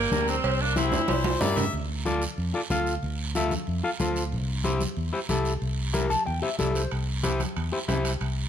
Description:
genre	latin, cumbia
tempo	185 BPM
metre	4/4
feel	straight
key	D minor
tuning	A4 = 440 Hz
part	bright saxophone section	melody	0.0-1.4 s	G3 to E4	-26 LUFS	right 1 dB	none
part	fingered electric bass	bass	0.0-8.5 s	C2 to G2	-29 LUFS	equal	none
part	electric guitar at the edge of break-up	accompaniment	0.1-8.1 s	D4 to A5	-28 LUFS	left 3 dB	none
part	congas	percussion	0.1-8.0 s	none	-34 LUFS	equal	none
part	guiro	percussion	0.1-8.5 s	none	-37 LUFS	right 6 dB	none
part	cowbell and timbales	percussion	0.4-1.6, 6.9-8.4 s	none	-33 LUFS	right 7 dB	none
part	clear harmonica	second line	1.1-1.7 s	C5 to E5	-31 LUFS	left 4 dB	none
room	light reverb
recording	none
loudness	-24 LUFS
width	side -9 dB against mid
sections	0.0-1.7 A section; 1.7-8.5 B section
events	drum fill 0.9-1.7; clean electric guitar fill 5.9-6.9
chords	0.4 C; 1.7 Dm; 4.3 C

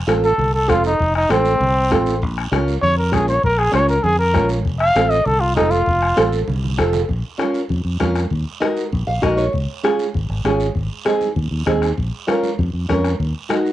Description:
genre	latin, cumbia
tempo	197 BPM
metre	4/4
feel	straight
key	Bb minor from 7.1 s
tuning	A4 = 442 Hz
part	fingered electric bass	bass	0.0-13.3 s	F1 to F2	-21 LUFS	equal	none
part	nylon-string guitar	accompaniment	0.1-13.7 s	C4 to F5	-19 LUFS	right 2 dB	none
part	bombo	percussion	0.1-13.7 s	none	-24 LUFS	left 4 dB	none
part	congas	percussion	0.1-13.7 s	none	-30 LUFS	right 6 dB	none
part	guiro	percussion	0.1-13.7 s	none	-36 LUFS	right 8 dB	none
part	breathy trumpet	melody	0.2-6.3 s	C4 to F5	-17 LUFS	equal	none
room	light reverb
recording	home recording on cassette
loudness	-16 LUFS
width	side -13 dB against mid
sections	0.0-7.1 A section; 7.1-13.7 B section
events	trumpet solo 0.0-7.1; drum fill 6.2-7.1; nylon-string guitar fill 8.9-9.5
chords	0.0 F7; 2.2 Bbm; 4.7 F; 7.1 Bbm; 8.3 Ebm; 9.5 Db; 10.8 Ab; 12.0 Bbm; 13.2 Ebm

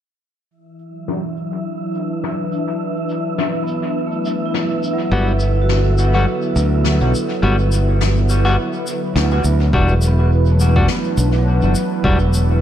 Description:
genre	ambient dub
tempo	104 BPM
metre	4/4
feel	swing 56% on 16ths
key	E minor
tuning	A4 = 440 Hz
part	airy breathy pad	sustained chords	0.5-12.6 s	D3 to B4	-22 LUFS	equal	chorus, vintage 12-bit sampler grit
part	wind-like tuned noise texture	texture	0.9-9.8 s	E4 to E5	-27 LUFS	left 2 dB	built-in reverb
part	shaker and snare drum	drums	0.8-12.5 s	none	-26 LUFS	left 3 dB	low-pass filter on snare, low-pass filter on perc, low-pass filter on room, dub echo
part	vibraphone with medium hard mallets	arpeggios	3.6-12.6 s	F#3 to B4	-26 LUFS	right 3 dB	low-pass filter, dub echo
part	clean electric guitar	stabs	5.1-12.2 s	G3 to F#4	-23 LUFS	left 2 dB	dub echo
part	modern bright fingered electric bass	bass	5.1-12.6 s	E1 to D2	-15 LUFS	equal	none
part	electronic kick drum	drums	9.7-12.2 s	none	-20 LUFS	equal	overdrive
room	light reverb, studio reverb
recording	none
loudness	-15 LUFS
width	side -10 dB against mid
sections	0.5-9.7 A section; 9.7-12.6 B section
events	filter sweep on drum 0.5-9.7; filter sweep on analog synth pad 0.5-9.7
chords	0.5 Esus2; 5.1 Gmaj7; 9.7 Em9

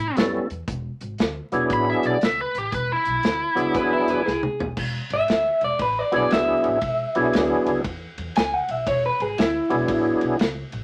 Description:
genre	electric blues shuffle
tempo	117 BPM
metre	4/4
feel	swing 64% on 8ths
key	E mixolydian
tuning	A4 = 440 Hz
part	biting lead guitar	melody	0.0-4.4 s	E4 to B5	-26 LUFS	equal	overdrive
part	upright bass	bass	0.0-10.8 s	E1 to F#2	-35 LUFS	equal	none
part	percussive tonewheel organ	accompaniment	0.2-10.4 s	F#3 to A4	-24 LUFS	equal	overdrive, chorus vibrato, slow rotary speaker
part	natural country drum kit	drums	0.2-10.8 s	crash cymbal, hi-hat, kick drum, ride cymbal, snare drum, toms	-29 LUFS	equal	none
part	electric guitar through a small old amp	second line	3.8-10.4 s	E4 to G#5	-25 LUFS	equal	none
room	moderate studio ambience, RT60 0.5 s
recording	vinyl crackle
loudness	-23 LUFS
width	mono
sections	0.0-4.8 A section; 4.8-10.8 B section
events	drum fill 4.3-4.8; clean electric guitar solo 4.8-10.8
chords	0.0 A9; 0.7 E9

